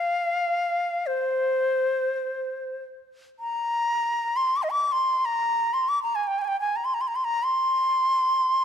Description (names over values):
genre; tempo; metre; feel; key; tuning
Turkish makam ensemble; free time; none; none; C makam ussak; A4 = 440 Hz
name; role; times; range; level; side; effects
bright reedy ney; solo; 0.0-8.6 s; C5 to D6-27c; -22 LUFS; equal; none
room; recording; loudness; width
moderate concert hall reverb, RT60 1.8 s; none; -22 LUFS; side -8 dB against mid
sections
0.0-3.1 A section; 3.1-8.6 A section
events
none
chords
none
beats
free time